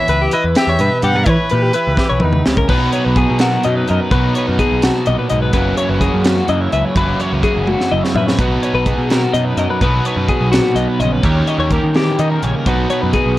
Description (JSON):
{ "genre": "math rock and midwest emo", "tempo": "84 BPM (dotted quarters)", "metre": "6/8", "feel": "straight", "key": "B major", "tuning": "A4 = 441 Hz", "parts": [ { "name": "rich violin", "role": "melody", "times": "0.0-2.5 s", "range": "B4 to F#5", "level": "-20 LUFS", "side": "equal", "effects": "none" }, { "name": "twelve-string electric guitar", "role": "accompaniment", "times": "0.0-13.4 s", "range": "F#2 to C#5", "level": "-21 LUFS", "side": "right 3 dB", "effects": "spring reverb" }, { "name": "twelve-string electric guitar", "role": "arpeggios", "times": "0.0-13.4 s", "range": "F#4 to E5", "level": "-19 LUFS", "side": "left 4 dB", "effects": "none" }, { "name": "growling picked electric bass", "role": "bass", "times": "0.1-13.4 s", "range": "F#1 to E3", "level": "-18 LUFS", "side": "equal", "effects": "overdrive" }, { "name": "crisp fusion drum kit", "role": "drums", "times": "0.1-13.3 s", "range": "crash cymbal, hi-hat, kick drum, snare drum, toms", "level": "-18 LUFS", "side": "equal", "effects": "none" }, { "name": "cranked stack guitar", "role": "riff", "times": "2.7-13.4 s", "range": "F#2 to G4", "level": "-21 LUFS", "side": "right 1 dB", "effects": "overdrive" } ], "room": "little or no reverb", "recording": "worn, warbling old tape, cassette tape, warbly pitch drift", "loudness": "-13 LUFS", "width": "side -15 dB against mid", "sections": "0.0-2.7 A section; 2.7-13.4 B section", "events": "drum fill 2.0-2.7, 7.7-8.4", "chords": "0.0 Em; 2.7 Bmaj7; 5.5 F#7sus4; 8.4 Bmaj7; 11.2 D#7; 12.7 B", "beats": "0.56 | 1.27 1.98 | 2.69 3.40 | 4.11 4.83 | 5.54 6.25 | 6.96 7.67 | 8.39 9.10 | 9.81 10.53 | 11.24 11.96 | 12.68" }